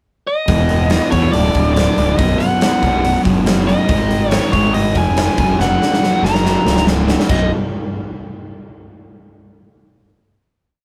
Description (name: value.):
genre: classic rock.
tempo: 141 BPM.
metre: 4/4.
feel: straight.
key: B major.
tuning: A4 = 441 Hz.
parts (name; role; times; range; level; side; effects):
biting lead guitar; melody; 0.3-7.5 s; C#5 to A#5; -21 LUFS; equal; overdrive.
biting overdriven guitar; riff; 0.5-7.5 s; B1 to G#3; -22 LUFS; equal; none.
fuzz fingered electric bass; bass; 0.5-7.5 s; B0 to E2; -20 LUFS; equal; overdrive.
huge arena drum kit; drums; 0.5-7.4 s; crash cymbal, hi-hat, kick drum, snare drum; -20 LUFS; equal; none.
room: moderate small room reverb, RT60 0.5 s.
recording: rough rehearsal-room recording.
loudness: -15 LUFS.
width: mono.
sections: 0.0-0.5 pickup bar; 0.5-7.3 pre-chorus; 7.3-9.0 final chord.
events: drum fill 5.6-7.3.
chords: 0.5 E5; 1.3 D5; 2.2 B5; 3.9 G#5; 5.4 F#; 7.3 B5.